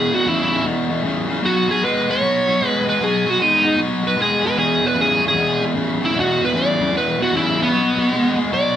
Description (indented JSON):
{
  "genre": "blues",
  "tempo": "152 BPM",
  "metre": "4/4",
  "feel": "swing 65% on 8ths",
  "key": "unclear",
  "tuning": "A4 = 438 Hz",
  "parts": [
    { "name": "biting lead guitar", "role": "melody", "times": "0.0-8.8 s", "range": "B3 to D5", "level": "-17 LUFS", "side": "right 1 dB", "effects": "overdrive" },
    { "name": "cranked stack guitar", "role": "riff", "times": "0.0-8.7 s", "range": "E2 to G#3", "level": "-19 LUFS", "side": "left 1 dB", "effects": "overdrive" }
  ],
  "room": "wet stone room reverb, RT60 1.0 s",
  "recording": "band playing live in one room",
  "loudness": "-16 LUFS",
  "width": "side -10 dB against mid",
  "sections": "0.0-8.8 A section",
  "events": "lead electric guitar solo 0.0-8.8",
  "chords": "0.0 E5; 1.4 Bsus2; 4.6 E; 7.7 B5"
}